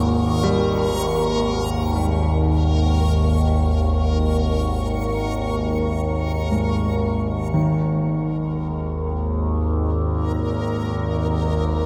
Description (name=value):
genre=dark ambient drone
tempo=free time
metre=none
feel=none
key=unclear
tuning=A4 = 441 Hz
part: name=deep dark ambient pad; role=sustained chords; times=0.0-11.9 s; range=A#3 to A#4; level=-34 LUFS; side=equal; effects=none
part: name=overtone-sweeping drone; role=drone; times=0.0-11.9 s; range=G#1 to D#2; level=-22 LUFS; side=equal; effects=chorus, built-in reverb
part: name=backwards swelling texture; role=texture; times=0.0-11.9 s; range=A#4 to C#6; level=-31 LUFS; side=equal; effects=built-in reverb
part: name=warm baby grand piano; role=arpeggios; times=0.4-11.9 s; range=G#2 to G3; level=-29 LUFS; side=equal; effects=diffuse ambient delay
room=wet cathedral reverb, RT60 6.7 s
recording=none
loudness=-21 LUFS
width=mono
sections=0.0-7.6 A section; 7.6-11.9 B section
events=fade-out on ambient pad 0.0-7.6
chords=0.0 G#sus2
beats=free time